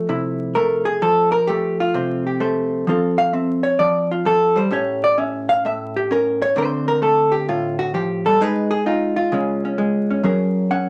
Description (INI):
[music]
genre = solo jazz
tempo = 130 BPM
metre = 4/4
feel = swing 68% on 8ths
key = F major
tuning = A4 = 440 Hz
[part]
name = vintage hollow-body jazz guitar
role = solo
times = 0.0-10.9 s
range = A2 to Gb5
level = -19 LUFS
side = equal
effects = none
[sound]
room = moderate studio ambience, RT60 0.5 s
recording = vinyl crackle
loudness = -19 LUFS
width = mono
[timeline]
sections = 0.0-2.9 A section; 2.9-10.9 A section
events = hollow-body jazz guitar solo 0.0-10.9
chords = 0.0 Fmaj9; 2.9 F; 4.7 A7; 6.5 Dm7; 8.4 Ab5; 9.3 Db; 10.2 Gbadd9